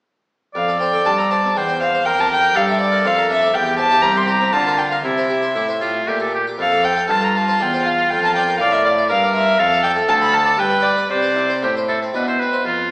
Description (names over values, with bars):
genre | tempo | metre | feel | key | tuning
classical, baroque-style sonata movement with continuo | 120 BPM | 3/4 | straight | F major, C major from 9.6 s | A4 = 440 Hz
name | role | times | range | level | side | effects
bright oboe | second line | 0.5-12.9 s | E4 to D5 | -19 LUFS | right 1 dB | none
warm violin | melody | 0.6-12.2 s | C5 to C6 | -18 LUFS | equal | none
harpsichord | accompaniment | 0.6-12.9 s | C2 to F5 | -23 LUFS | equal | none
rich cello | bass | 0.6-12.9 s | C2 to D3 | -26 LUFS | equal | none
room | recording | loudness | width
wet scoring stage reverb, RT60 1.9 s | recorded in a church or concert hall, small speaker sound | -14 LUFS | side -26 dB against mid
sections
0.6-12.7 A section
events
none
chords
0.6 F; 2.1 Gm7/F; 3.5 C/E; 4.5 Bb/D; 5.0 C; 6.6 F; 8.1 Gm7/F; 9.6 Dm/F; 10.6 G; 11.1 C